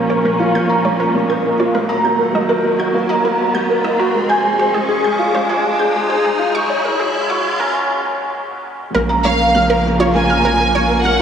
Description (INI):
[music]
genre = piano and strings electronica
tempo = 100 BPM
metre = 4/4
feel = straight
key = Bb minor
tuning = A4 = 440 Hz
[part]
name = warm studio string section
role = sustained chords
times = 0.0-11.2 s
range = Eb2 to Db4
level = -22 LUFS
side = right 1 dB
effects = none
[part]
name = felt-muted upright piano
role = riff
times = 0.0-11.2 s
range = Ab3 to Bb5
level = -16 LUFS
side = equal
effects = ensemble chorus, analog delay
[part]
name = riser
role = sound effects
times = 0.1-7.7 s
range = none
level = -24 LUFS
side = equal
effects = none
[part]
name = analog pluck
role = arpeggios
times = 0.1-11.2 s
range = Ab4 to G6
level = -23 LUFS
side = right 1 dB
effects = chorus, analog delay
[part]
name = round analog bass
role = bass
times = 8.9-11.2 s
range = Bb1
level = -21 LUFS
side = equal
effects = none
[part]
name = warm studio violin section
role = melody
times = 9.2-11.2 s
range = F5 to Ab5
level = -16 LUFS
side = right 1 dB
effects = none
[sound]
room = wet plate reverb, RT60 3.9 s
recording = dreamy mix soaked in reverb, high-pass filter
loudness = -13 LUFS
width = side -8 dB against mid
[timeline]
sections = 0.0-8.9 A section; 8.9-11.2 B section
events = build-up 0.0-8.9; filter sweep on synth arpeggio sound 0.0-8.9; filter sweep 0.0-8.9; riser 0.1-7.7; break 7.7-8.9; drop 8.9-11.2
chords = 0.0 Bbm; 1.7 Ebm; 4.1 Fm; 6.5 Gbadd9; 8.9 Bbm